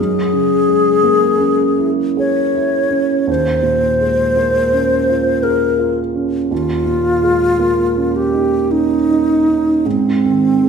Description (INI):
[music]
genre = classical, impressionist duo for alto flute and grand piano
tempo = 50-58 BPM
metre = 3/4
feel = rubato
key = unclear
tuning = A4 = 441 Hz
[part]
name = alto flute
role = melody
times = 0.0-10.7 s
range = C4 to Db5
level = -14 LUFS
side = left 1 dB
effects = none
[part]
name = dark baby grand piano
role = accompaniment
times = 0.0-10.7 s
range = Eb2 to Ab4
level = -17 LUFS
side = right 4 dB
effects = none
[sound]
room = wet scoring stage reverb, RT60 1.4 s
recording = minimal, uncompressed stereo recording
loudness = -13 LUFS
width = side -6 dB against mid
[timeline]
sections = 0.0-10.7 A section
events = none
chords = 0.0 Gb9; 3.3 Eb11; 6.5 Eb9sus4; 9.9 Ab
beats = 1.03 2.19 | 3.29 4.36 5.44 | 6.51 7.60 8.71 | 9.85